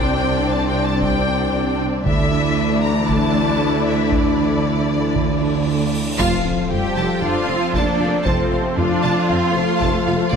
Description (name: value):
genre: cinematic, hybrid orchestral and electronic film score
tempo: 116 BPM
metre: 4/4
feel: straight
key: unclear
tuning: A4 = 440 Hz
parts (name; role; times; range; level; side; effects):
- warm symphonic violin section; melody; 0.0-10.4 s; C5 to Bb5; -27 LUFS; left 5 dB; none
- warm symphonic violin section; second line; 0.0-10.4 s; D4 to G5; -26 LUFS; left 2 dB; none
- warm symphonic viola section; accompaniment; 0.0-10.4 s; A3 to D4; -25 LUFS; equal; none
- dark French horn section; sustained chords; 0.0-10.4 s; C3 to E4; -26 LUFS; left 6 dB; none
- sweeping resonant pad; sustained chords; 0.0-10.4 s; E3 to D5; -25 LUFS; left 1 dB; chorus
- harp-like synth pluck; arpeggios; 0.0-10.4 s; C3 to F4; -27 LUFS; right 4 dB; none
- clear symphonic double bass section; bass; 0.0-10.4 s; F1 to D2; -26 LUFS; right 2 dB; none
- dark symphonic cello section; bass; 0.0-10.4 s; C3 to G4; -25 LUFS; right 3 dB; none
- mellow tuba; bass; 0.0-10.4 s; F1 to D2; -25 LUFS; right 4 dB; none
- taiko ensemble; drums; 1.0-10.4 s; none; -26 LUFS; equal; none
- cymbal swell and impact; sound effects; 5.4-8.3 s; none; -30 LUFS; equal; none
room: moderate scoring stage reverb, RT60 1.9 s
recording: none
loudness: -16 LUFS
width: side -6 dB against mid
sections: 0.0-6.2 A section; 6.2-10.4 B section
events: cymbal swell 5.4-6.2; band accent 6.2-6.7; impact 6.2-8.3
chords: 0.0 Csus2; 2.1 Dsus2; 6.2 F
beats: 0.51 1.02 1.54 | 2.06 2.57 3.09 3.61 | 4.13 4.64 5.16 5.68 | 6.20 6.71 7.23 7.75 | 8.26 8.78 9.30 9.81 | 10.33